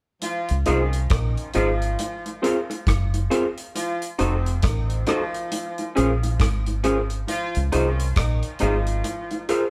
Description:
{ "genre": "lovers rock reggae", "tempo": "68 BPM", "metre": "4/4", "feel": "swing 61% on 16ths", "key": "unclear", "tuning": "A4 = 435 Hz", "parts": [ { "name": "warm horn section", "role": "second line", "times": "0.2-9.5 s", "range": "C3 to F4", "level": "-33 LUFS", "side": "equal", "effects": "dub echo" }, { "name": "damped 70s drum kit", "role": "drums", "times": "0.2-9.7 s", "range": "hi-hat, kick drum, rim click", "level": "-28 LUFS", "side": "equal", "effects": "none" }, { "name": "bongos", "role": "percussion", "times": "0.2-9.5 s", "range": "none", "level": "-37 LUFS", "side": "equal", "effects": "none" }, { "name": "deep dub fingered electric bass", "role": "bass", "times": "0.5-9.0 s", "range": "F1 to Db2", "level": "-26 LUFS", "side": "equal", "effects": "none" }, { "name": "tine electric piano", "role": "accompaniment", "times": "0.7-9.7 s", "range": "Db4 to C5", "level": "-27 LUFS", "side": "equal", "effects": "none" }, { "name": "electric guitar through a small old amp", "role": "stabs", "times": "0.7-9.6 s", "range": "C4 to C5", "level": "-28 LUFS", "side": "equal", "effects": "none" } ], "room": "light reverb", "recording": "band playing live in one room", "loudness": "-23 LUFS", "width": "mono", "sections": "0.2-9.7 A section", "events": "none", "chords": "0.2 Dbmaj9 (rootless); 2.0 Gbmaj9#11; 3.8 F7b9; 5.5 Bbm7; 7.3 Dbmaj9; 9.0 Gbmaj9#11 (rootless)", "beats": "| 0.22 1.10 1.99 2.87 | 3.75 4.63 5.52 6.40 | 7.28 8.16 9.05" }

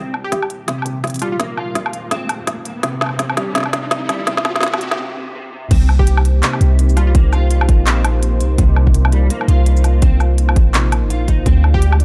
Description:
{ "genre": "half-time drum and bass", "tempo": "167 BPM", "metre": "4/4", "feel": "swing 58% on 16ths, half-time", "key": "C minor", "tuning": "A4 = 439 Hz", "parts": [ { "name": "dark analog pad", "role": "sustained chords", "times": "0.0-12.0 s", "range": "Ab3 to D5", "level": "-30 LUFS", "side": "equal", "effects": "chorus, vintage 12-bit sampler grit, sidechain pumping" }, { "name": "electric guitar at the edge of break-up", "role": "arpeggios", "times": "0.0-11.6 s", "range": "C3 to F4", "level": "-28 LUFS", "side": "equal", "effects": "analog chorus, low-pass filter, digital delay" }, { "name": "long sustained 808-style bass", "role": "bass", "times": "0.0-12.0 s", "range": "G1 to D2", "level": "-15 LUFS", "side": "equal", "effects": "high-pass filter" }, { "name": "riser", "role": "sound effects", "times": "1.1-5.0 s", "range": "none", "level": "-32 LUFS", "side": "equal", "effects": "none" }, { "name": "organic electronic drum kit", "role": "drums", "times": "0.1-12.0 s", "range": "crash cymbal, handclaps, hi-hat, shaker, snare drum, woodblock", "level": "-22 LUFS", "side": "equal", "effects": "overdrive, studio reverb" }, { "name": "plucky unison lead", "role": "melody", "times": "0.2-1.4, 6.0-7.1, 11.7-12.0 s", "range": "F4 to G4", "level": "-29 LUFS", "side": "equal", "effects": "digital delay" }, { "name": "electronic kick drum", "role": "drums", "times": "0.3-11.8 s", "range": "none", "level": "-17 LUFS", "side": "equal", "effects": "high-pass filter on kick, studio reverb, high-pass filter on room" } ], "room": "light reverb", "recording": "dark, warm production, high-pass filter", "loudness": "-15 LUFS", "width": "mono", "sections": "0.0-5.7 A section; 5.7-12.0 B section", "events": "build-up 0.0-5.7; drum fill 0.0-5.0; filter sweep on clean electric guitar 0.0-5.7; riser 1.1-5.0; break 5.0-5.7; drop 5.7-12.0", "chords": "0.0 Cm7; 11.5 Ddim", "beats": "0.32 0.68 1.04 | 1.40 1.76 2.12 2.48 | 2.84 3.19 3.55 3.91 | 4.27 4.63 4.99 5.35 | 5.71 6.07 6.43 6.79 | 7.15 7.51 7.87 8.22 | 8.58 8.94 9.30 9.66 | 10.02 10.38 10.74 11.10 | 11.46 11.82" }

